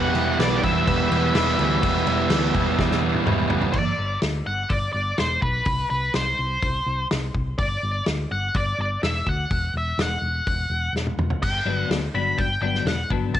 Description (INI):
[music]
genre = quiet-loud alternative rock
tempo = 125 BPM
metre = 4/4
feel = straight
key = unclear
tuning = A4 = 438 Hz
[part]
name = octave-fuzz lead guitar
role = melody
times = 0.0-13.4 s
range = B4 to B5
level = -26 LUFS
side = left 1 dB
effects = distortion, cassette tape
[part]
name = dark chamber string section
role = sustained chords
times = 0.0-3.7 s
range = E3 to B4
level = -30 LUFS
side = left 2 dB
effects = cassette tape
[part]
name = distorted electric guitar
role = riff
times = 0.0-3.7 s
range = E3 to E4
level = -27 LUFS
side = left 12 dB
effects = overdrive, cassette tape
[part]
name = thick fuzz guitar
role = riff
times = 0.0-3.7 s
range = E3 to E4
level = -23 LUFS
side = right 9 dB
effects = distortion, cassette tape
[part]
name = hollow-body short-scale picked electric bass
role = bass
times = 0.0-13.4 s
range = E1 to D2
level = -27 LUFS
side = left 1 dB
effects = none
[part]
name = loose indie drum kit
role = drums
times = 0.1-13.4 s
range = crash cymbal, hi-hat, kick drum, snare drum, toms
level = -26 LUFS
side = equal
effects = cassette tape
[part]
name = twelve-string electric guitar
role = arpeggios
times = 11.7-13.4 s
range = D3 to D4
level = -27 LUFS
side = left 9 dB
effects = analog chorus, cassette tape
[sound]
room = little or no reverb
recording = home recording on cassette, nothing above 10.7 kHz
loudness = -20 LUFS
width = side -11 dB against mid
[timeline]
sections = 0.0-3.7 A section; 3.7-13.4 B section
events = drum fill 2.8-3.7, 10.9-11.4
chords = 0.0 Em; 3.7 G5; 5.7 N.C.; 7.6 G5; 9.5 Esus2; 11.4 Gmaj7